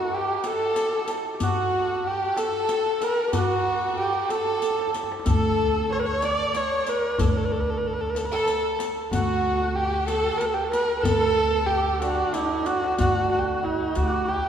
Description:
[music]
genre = Persian modal ensemble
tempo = 62 BPM (dotted quarters)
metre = 6/8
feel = straight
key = unclear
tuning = A4 = 440 Hz
[part]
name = warm kamancheh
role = melody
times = 0.0-14.5 s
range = Eb4+37c to D5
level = -24 LUFS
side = equal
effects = none
[part]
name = rich chamber violin section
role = second line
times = 0.0-12.7 s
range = D4 to D5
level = -33 LUFS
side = left 1 dB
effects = none
[part]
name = santur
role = second line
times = 0.0-14.5 s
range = D4 to D5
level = -30 LUFS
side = right 3 dB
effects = none
[part]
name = riq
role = percussion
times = 0.4-14.1 s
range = none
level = -38 LUFS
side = left 4 dB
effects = none
[part]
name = tombak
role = percussion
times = 0.4-14.4 s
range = none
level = -32 LUFS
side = left 3 dB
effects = none
[part]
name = upright bass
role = bass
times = 5.3-14.3 s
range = D2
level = -28 LUFS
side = right 1 dB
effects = none
[sound]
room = wet church reverb, RT60 3.1 s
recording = recorded in a church or concert hall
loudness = -22 LUFS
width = side -8 dB against mid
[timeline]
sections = 0.0-13.0 A section; 13.0-14.5 B section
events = drum fill 4.6-5.3, 12.3-13.0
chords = none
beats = 0.45 | 1.41 2.37 | 3.34 4.30 | 5.27 6.23 | 7.20 8.16 | 9.13 10.10 | 11.06 12.03 | 12.99 13.96

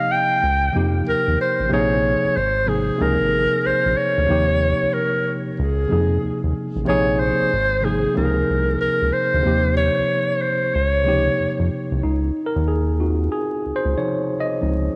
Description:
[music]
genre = R&B, neo-soul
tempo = 93 BPM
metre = 4/4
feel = swing 61% on 16ths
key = Db lydian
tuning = A4 = 442 Hz
[part]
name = breathy clarinet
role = melody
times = 0.0-11.7 s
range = Ab4 to G5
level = -22 LUFS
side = equal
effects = none
[part]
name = mellow tine electric piano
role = accompaniment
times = 0.0-15.0 s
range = C3 to Eb5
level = -25 LUFS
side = equal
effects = none
[part]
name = round analog bass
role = bass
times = 0.4-14.9 s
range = Ab1 to F2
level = -24 LUFS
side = equal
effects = none
[sound]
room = moderate plate reverb, RT60 3.0 s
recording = vinyl crackle, lossy compression artefacts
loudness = -20 LUFS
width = mono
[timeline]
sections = 0.0-12.0 A section; 12.0-15.0 B section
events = tine electric piano solo 12.0-15.0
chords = 0.4 Db6; 1.7 Ab69; 3.0 Db6; 4.3 Eb7; 5.6 Db6; 6.9 Ab69; 8.2 Db6; 9.4 Eb7; 10.7 Db6; 12.0 Dbmaj9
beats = 0.41 1.06 | 1.70 2.35 2.99 3.64 | 4.29 4.93 5.58 6.22 | 6.87 7.51 8.16 8.80 | 9.45 10.09 10.74 11.38 | 12.03 12.67 13.32 13.96 | 14.61

